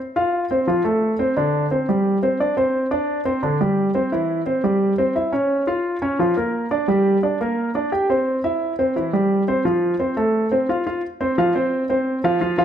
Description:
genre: latin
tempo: 174 BPM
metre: 4/4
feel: straight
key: unclear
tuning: A4 = 441 Hz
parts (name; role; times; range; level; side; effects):
- warm grand piano; solo; 0.2-12.6 s; D3 to G5; -18 LUFS; equal; none
room: moderate large studio reverb, RT60 1.1 s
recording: lossy compression artefacts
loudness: -18 LUFS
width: side -9 dB against mid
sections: 0.0-11.0 A section; 11.0-12.6 B section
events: none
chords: 0.0 F; 1.4 Csus2; 4.1 C; 5.5 Bbm; 6.9 Gm; 8.3 C; 9.7 F; 11.0 Csus4

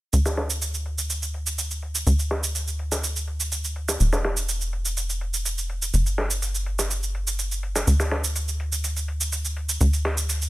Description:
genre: progressive house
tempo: 124 BPM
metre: 4/4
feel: straight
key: D major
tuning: A4 = 445 Hz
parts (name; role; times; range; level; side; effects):
- tight sequencer bass; bass; 0.1-10.5 s; E1 to D2; -25 LUFS; equal; tube saturation
- cabasa; drums; 0.1-10.5 s; none; -27 LUFS; right 3 dB; overdrive
- dusty soul sampler-style drum kit; drums; 0.1-10.4 s; hi-hat, snare drum; -30 LUFS; equal; high-pass filter on hats, low-pass filter on hats, high-pass filter on snare, low-pass filter on snare
room: little or no reverb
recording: none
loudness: -23 LUFS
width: side -18 dB against mid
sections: 0.1-10.5 A section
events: none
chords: none

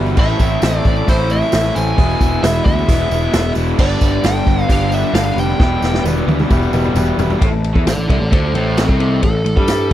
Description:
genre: classic rock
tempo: 133 BPM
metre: 4/4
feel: straight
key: A minor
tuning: A4 = 439 Hz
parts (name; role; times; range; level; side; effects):
- clear upright piano; accompaniment; 0.0-7.4 s; D4 to B5; -29 LUFS; right 6 dB; none
- fingerpicked twelve-string acoustic guitar; accompaniment; 0.0-9.9 s; E2 to A4; -28 LUFS; left 3 dB; none
- raw garage guitar; riff; 0.0-9.9 s; E2 to G4; -20 LUFS; left 1 dB; overdrive
- fuzz picked electric bass; bass; 0.0-9.9 s; E1 to G2; -18 LUFS; equal; overdrive
- tambourine; percussion; 0.1-9.8 s; none; -37 LUFS; right 8 dB; none
- fuzz lead guitar; melody; 0.2-9.9 s; C4 to G#5; -21 LUFS; equal; distortion
- vintage drum kit; drums; 0.2-9.9 s; crash cymbal, hi-hat, kick drum, ride cymbal, snare drum, toms; -16 LUFS; equal; none
room: little or no reverb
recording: dry, close 1970s-style studio recording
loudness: -13 LUFS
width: side -12 dB against mid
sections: 0.0-7.4 A section; 7.4-9.9 B section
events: drum fill 5.6-7.4; upright piano fill 6.7-7.4; lead electric guitar solo 7.4-9.9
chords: 0.2 Am; 2.0 E; 3.8 G; 5.6 Em; 7.4 Am

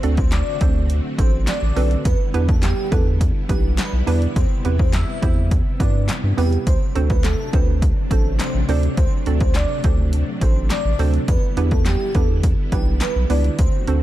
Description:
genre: dance-pop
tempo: 104 BPM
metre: 4/4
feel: straight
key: E minor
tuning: A4 = 440 Hz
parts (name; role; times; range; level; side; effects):
- hollow square pluck; accompaniment; 0.0-14.0 s; B3 to D5; -28 LUFS; right 7 dB; chorus, sidechain pumping
- string machine, cellos; sustained chords; 0.0-14.0 s; C3 to F#4; -29 LUFS; left 1 dB; ensemble chorus, sidechain pumping
- saturated sub bass; bass; 0.0-14.0 s; A1 to G2; -19 LUFS; equal; sidechain pumping
- punchy analog drum machine; drums; 0.0-14.0 s; handclaps, hi-hat, kick drum, snare drum; -20 LUFS; equal; none
- airy dreamy lead; melody; 0.2-13.7 s; G4 to E5; -28 LUFS; equal; chorus
- group handclap; percussion; 0.3-13.1 s; none; -36 LUFS; left 6 dB; none
room: digital ambience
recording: dark, warm production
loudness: -16 LUFS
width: side -14 dB against mid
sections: 0.0-14.0 A section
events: none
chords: 0.0 D7; 2.1 Em7; 4.4 Cmaj7; 6.7 D7; 11.3 Em7

